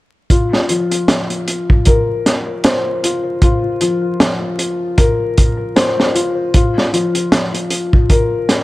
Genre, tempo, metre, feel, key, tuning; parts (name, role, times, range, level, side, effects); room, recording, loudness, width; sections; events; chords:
trip hop; 77 BPM; 4/4; swing 58% on 16ths; A4 = 440 Hz
felt-muted upright piano; arpeggios; 0.3-8.6 s; F3 to C5; -17 LUFS; left 2 dB; low-pass filter, ping-pong delay
crunchy breakbeat drum kit; drums; 0.3-8.6 s; hi-hat, kick drum, snare drum; -14 LUFS; equal
small room ambience; vinyl crackle; -13 LUFS; side -18 dB against mid
0.3-8.6 A section